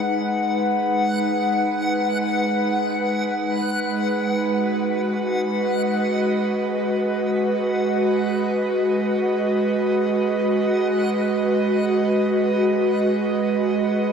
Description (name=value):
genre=ambient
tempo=free time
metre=none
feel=none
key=G# minor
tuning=A4 = 441 Hz
part: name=airy breathy pad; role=sustained chords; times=0.0-14.1 s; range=G#3 to F#5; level=-20 LUFS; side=right 1 dB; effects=chorus
part: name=backwards swelling texture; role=texture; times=0.0-14.1 s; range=F#5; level=-27 LUFS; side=left 2 dB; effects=built-in reverb
room=wet huge ambient reverb, RT60 8.3 s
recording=dark, warm production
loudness=-19 LUFS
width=side -6 dB against mid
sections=0.0-14.1 A section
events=none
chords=0.0 G#m7